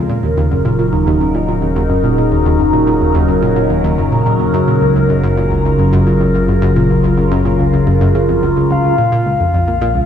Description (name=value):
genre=ambient, sequencer-driven space music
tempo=108 BPM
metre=4/4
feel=straight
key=unclear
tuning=A4 = 438 Hz
part: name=phased analog pad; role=sustained chords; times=0.0-10.1 s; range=C#3 to A#4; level=-14 LUFS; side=equal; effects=phaser, chorus, shimmer reverb
part: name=round analog bass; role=bass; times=0.0-10.1 s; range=D#1 to A#1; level=-23 LUFS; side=equal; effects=none
part: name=analog pluck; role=riff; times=0.1-10.0 s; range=C#2 to C#3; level=-15 LUFS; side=equal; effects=chorus, ping-pong delay
part: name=soft octave-layered synth lead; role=melody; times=8.7-10.1 s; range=E#5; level=-16 LUFS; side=left 5 dB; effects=chorus, shimmer reverb, ping-pong delay
part: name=pulsing gated texture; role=texture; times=9.0-10.1 s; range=none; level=barely audible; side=none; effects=none
room=wet concert hall reverb, RT60 2.5 s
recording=faint mains hum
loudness=-11 LUFS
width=side -8 dB against mid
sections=0.0-9.0 A section; 9.0-10.1 B section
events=none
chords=0.1 D#m7; 4.5 F#maj7; 9.0 A#m7